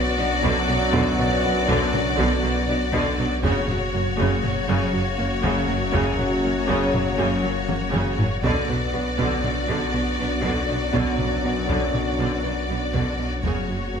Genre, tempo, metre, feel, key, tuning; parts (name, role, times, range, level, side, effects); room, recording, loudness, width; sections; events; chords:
cinematic, hybrid orchestral and electronic film score; 120 BPM; 5/4; straight; B harmonic minor; A4 = 441 Hz
rich symphonic violin section; melody; 0.0-14.0 s; C#5 to D5; -28 LUFS; left 5 dB
clear symphonic violin section; second line; 0.0-14.0 s; F#4; -30 LUFS; left 2 dB
hollow soft pad; sustained chords; 0.0-14.0 s; F#3 to D5; -31 LUFS; left 2 dB; chorus
mellow French horn section; sustained chords; 0.0-14.0 s; A#3 to D4; -31 LUFS; left 4 dB
warm trombone section; sustained chords; 0.0-14.0 s; F#2 to F#3; -31 LUFS; right 3 dB
soft round pluck; arpeggios; 0.0-14.0 s; F#3 to B4; -32 LUFS; right 2 dB
punchy sub bass; bass; 0.0-14.0 s; F#1 to B1; -31 LUFS; equal
rich symphonic viola section; accompaniment; 0.2-14.0 s; C#3 to B3; -29 LUFS; right 1 dB
clear symphonic cello section; bass; 0.2-14.0 s; F#2 to B2; -29 LUFS; right 2 dB
clear symphonic double bass section; bass; 0.2-14.0 s; F#1 to B1; -30 LUFS; right 3 dB
taiko ensemble; drums; 0.4-13.9 s; -29 LUFS; equal
wet recital hall reverb, RT60 1.7 s; -20 LUFS; side -7 dB against mid
0.0-14.0 A section
drum fill 7.7-8.4
0.0 Bm; 3.4 F#; 8.4 Bm; 13.4 F#